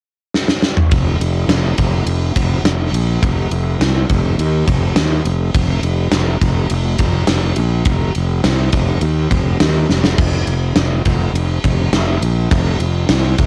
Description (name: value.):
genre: hard rock.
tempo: 103 BPM.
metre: 4/4.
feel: straight.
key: unclear.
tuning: A4 = 441 Hz.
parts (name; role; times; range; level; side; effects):
gated 80s drum kit; drums; 0.3-13.5 s; crash cymbal, kick drum, ride cymbal, snare drum, toms; -20 LUFS; equal; cassette tape.
fuzz fingered electric bass; bass; 0.9-13.5 s; F1 to Eb2; -18 LUFS; equal; overdrive.
room: little or no reverb.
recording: home recording on cassette.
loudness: -16 LUFS.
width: mono.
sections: 0.9-13.5 A section.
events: drum fill 0.3-0.9, 9.9.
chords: none.